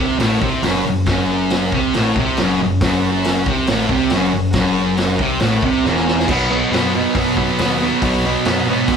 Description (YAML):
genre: garage rock duo or trio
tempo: 138 BPM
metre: 4/4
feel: straight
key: F# mixolydian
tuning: A4 = 440 Hz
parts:
  - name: combo organ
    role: sustained chords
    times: 0.0-9.0 s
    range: F#4 to A#5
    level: -27 LUFS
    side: left 1 dB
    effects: none
  - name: thick fuzz guitar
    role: riff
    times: 0.0-9.0 s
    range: E2 to B3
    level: -16 LUFS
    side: equal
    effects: distortion
  - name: growling picked electric bass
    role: bass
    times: 0.0-9.0 s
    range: E1 to B2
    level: -26 LUFS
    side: equal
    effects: overdrive
  - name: vintage drum kit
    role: drums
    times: 0.2-9.0 s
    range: crash cymbal, hi-hat, kick drum, snare drum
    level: -22 LUFS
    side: equal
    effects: none
room: light reverb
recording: band playing live in one room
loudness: -14 LUFS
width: side -6 dB against mid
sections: 0.0-6.3 A section; 6.3-9.0 B section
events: transistor combo organ fill 5.6-6.3; drum fill 5.9-6.3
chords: 0.0 F#; 6.3 B